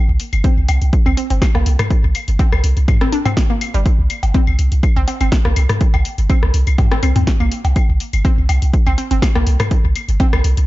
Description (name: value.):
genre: minimal techno.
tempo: 123 BPM.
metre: 4/4.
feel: swing 54% on 16ths.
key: unclear.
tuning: A4 = 440 Hz.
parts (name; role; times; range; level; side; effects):
punchy sub bass; bass; 0.1-10.7 s; G1 to Eb2; -15 LUFS; equal; sidechain pumping.
punchy analog drum machine; drums; 0.2-10.7 s; hi-hat, snare drum; -26 LUFS; left 1 dB; overdrive.
organic electronic drum kit; percussion; 0.3-10.4 s; claves, cowbell, rim click, toms; -22 LUFS; left 2 dB; ping-pong delay.
hollow square pluck; riff; 0.4-10.2 s; G3 to D4; -24 LUFS; equal; chorus, sidechain pumping, tape echo.
electronic kick drum; drums; 0.4-10.3 s; none; -15 LUFS; equal; overdrive.
room: digital ambience.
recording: dark, warm production, nothing above 7.6 kHz.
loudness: -13 LUFS.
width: side -18 dB against mid.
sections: 0.0-10.7 A section.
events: none.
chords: none.